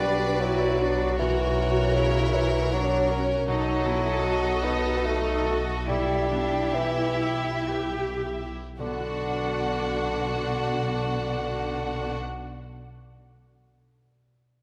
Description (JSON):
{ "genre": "classical", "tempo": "53-80 BPM", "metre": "3/4", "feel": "rubato", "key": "B minor", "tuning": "A4 = 440 Hz", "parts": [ { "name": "warm symphonic violin section", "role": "melody", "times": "0.0-12.2 s", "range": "C#5 to F#5", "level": "-37 LUFS", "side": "equal", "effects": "none" }, { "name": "clear studio violin section", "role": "second line", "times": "0.0-12.2 s", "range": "F#4 to B4", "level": "-36 LUFS", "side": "equal", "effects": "none" }, { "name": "clear bassoon", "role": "accompaniment", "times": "0.0-12.2 s", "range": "C#3 to B3", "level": "-31 LUFS", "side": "equal", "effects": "none" }, { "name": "rich studio viola section", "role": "accompaniment", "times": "0.0-12.2 s", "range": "D4 to F#4", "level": "-35 LUFS", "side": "equal", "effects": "none" }, { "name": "concert harp", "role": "arpeggios", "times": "0.0-12.7 s", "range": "B2 to F#5", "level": "-38 LUFS", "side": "equal", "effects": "none" }, { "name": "rich studio cello section", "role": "bass", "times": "0.0-12.2 s", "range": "B2 to G4", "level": "-35 LUFS", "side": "equal", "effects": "none" }, { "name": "rich studio double bass section", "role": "bass", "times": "0.0-12.2 s", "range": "B1", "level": "-33 LUFS", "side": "equal", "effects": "none" } ], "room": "wet concert hall reverb, RT60 2.4 s", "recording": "none", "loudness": "-26 LUFS", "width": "mono", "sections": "0.0-8.8 A section; 8.8-11.9 B section", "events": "slowing down 2.4-8.8", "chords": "0.0 Bm; 1.2 F#7/B; 3.5 B7; 5.9 Em/B; 8.8 Bm", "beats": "0.41 | 1.20 1.97 2.73 | 3.49 4.25 5.05 | 5.88 6.75 7.71 | 8.79 9.81 10.85" }